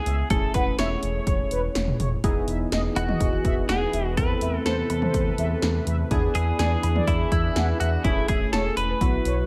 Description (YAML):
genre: synth-pop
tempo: 124 BPM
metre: 4/4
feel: straight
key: unclear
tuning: A4 = 440 Hz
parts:
  - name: twelve-string electric guitar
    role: melody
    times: 0.0-9.5 s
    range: E4 to C#5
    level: -31 LUFS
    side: equal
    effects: tape echo
  - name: warm analog keys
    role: accompaniment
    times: 0.0-9.5 s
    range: F#3 to A4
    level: -33 LUFS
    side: equal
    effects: chorus
  - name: mellow synth brass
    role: second line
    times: 0.1-9.3 s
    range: B4 to F#5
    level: -35 LUFS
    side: equal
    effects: chorus, tape echo
  - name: smooth gliding synth bass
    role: bass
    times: 0.1-9.4 s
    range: E1 to E2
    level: -29 LUFS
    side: equal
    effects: none
  - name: punchy analog drum machine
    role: drums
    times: 0.1-9.4 s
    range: cowbell, hi-hat, kick drum, snare drum, toms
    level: -28 LUFS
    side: equal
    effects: gated reverb
  - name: sweeping resonant pad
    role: sustained chords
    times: 2.2-9.5 s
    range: C3 to D#5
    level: -36 LUFS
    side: equal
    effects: chorus
room: light reverb, digital ambience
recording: none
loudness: -24 LUFS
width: mono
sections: 0.0-9.5 A section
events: none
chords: 0.3 Amaj7/E; 2.2 Emaj7; 4.2 Amadd9/E; 6.1 E7; 8.0 Amaj7/E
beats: | 0.30 0.79 1.27 1.75 | 2.24 2.72 3.21 3.69 | 4.17 4.66 5.14 5.63 | 6.11 6.59 7.08 7.56 | 8.04 8.53 9.01